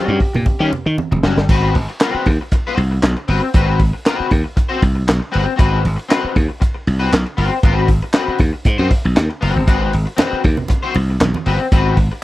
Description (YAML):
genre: funk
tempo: 117 BPM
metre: 4/4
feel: straight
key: unclear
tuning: A4 = 440 Hz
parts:
  - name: warm alto saxophone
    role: melody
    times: 0.0-1.0 s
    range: G4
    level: -27 LUFS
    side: right 1 dB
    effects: none
  - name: electric guitar at the edge of break-up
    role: accompaniment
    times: 0.0-12.2 s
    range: G3 to C5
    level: -20 LUFS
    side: left 4 dB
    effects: ensemble chorus
  - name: slap bass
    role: bass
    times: 0.1-12.1 s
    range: F1 to Eb3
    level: -16 LUFS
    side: equal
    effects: none
  - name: crunchy breakbeat drum kit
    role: drums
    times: 0.2-12.2 s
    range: crash cymbal, handclaps, hi-hat, kick drum, ride cymbal, snare drum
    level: -17 LUFS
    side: equal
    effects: none
  - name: congas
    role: percussion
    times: 0.3-1.2, 10.2-11.5 s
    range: none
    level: -25 LUFS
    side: right 4 dB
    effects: none
room: small room ambience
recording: dry, close 1970s-style studio recording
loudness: -14 LUFS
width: side -17 dB against mid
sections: 0.0-1.5 A section; 1.5-12.2 B section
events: drum fill 0.5-1.5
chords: 0.0 Eb7#9; 1.5 Ab7#9